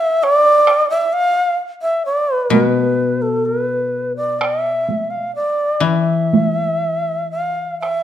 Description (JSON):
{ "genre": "japanese traditional, Japanese chamber music", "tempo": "60-67 BPM", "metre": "4/4", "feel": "rubato", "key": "E in sen", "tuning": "A4 = 441 Hz", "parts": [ { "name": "reedy long shakuhachi", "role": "melody", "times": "0.0-8.0 s", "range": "A4 to F5", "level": "-16 LUFS", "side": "equal", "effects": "none" }, { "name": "taiko ensemble", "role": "percussion", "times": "0.2-8.0 s", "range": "none", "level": "-20 LUFS", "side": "right 4 dB", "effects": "none" }, { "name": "koto", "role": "accompaniment", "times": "2.5-8.0 s", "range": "B2 to E3", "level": "-20 LUFS", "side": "left 6 dB", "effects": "none" } ], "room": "moderate recital hall reverb, RT60 1.3 s", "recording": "dark, warm production", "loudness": "-15 LUFS", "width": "side -11 dB against mid", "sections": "0.0-8.0 A section", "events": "none", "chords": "none", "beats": "| 0.67 1.58 2.52 3.45 | 4.39 5.34 6.31 7.31" }